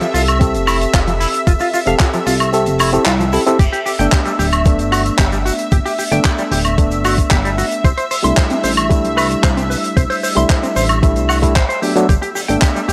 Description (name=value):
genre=nu-disco, nu disco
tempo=113 BPM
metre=4/4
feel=straight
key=G major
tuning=A4 = 441 Hz
part: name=reed electric piano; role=accompaniment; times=0.0-12.9 s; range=F#3 to A4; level=-22 LUFS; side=equal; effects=sidechain pumping, tape echo
part: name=lush unison pad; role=sustained chords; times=0.0-12.9 s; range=E5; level=-25 LUFS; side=equal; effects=chorus, phaser, sidechain pumping
part: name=semi-hollow electric guitar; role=riff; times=0.0-12.9 s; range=F3 to C6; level=-24 LUFS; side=equal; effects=lush chorus
part: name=damped 70s drum kit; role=drums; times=0.0-12.9 s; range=crash cymbal, handclaps, hi-hat, shaker, woodblock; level=-22 LUFS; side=equal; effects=none
part: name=chorused synth bass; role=bass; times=0.1-12.9 s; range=D1 to C2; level=-21 LUFS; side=equal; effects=none
part: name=electronic kick drum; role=drums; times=0.4-12.7 s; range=none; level=-16 LUFS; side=equal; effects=none
room=small room ambience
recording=dry, gritty hardware recording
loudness=-15 LUFS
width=mono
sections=0.0-12.9 A section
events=kick drops out 2.5-3.6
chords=0.0 Fmaj7; 3.6 G; 7.8 C6; 11.8 Gmaj7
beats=0.41 0.94 | 1.47 2.00 2.53 3.06 | 3.60 4.13 4.66 5.19 | 5.72 6.25 6.78 7.31 | 7.84 8.38 8.91 9.44 | 9.97 10.50 11.03 11.56 | 12.09 12.62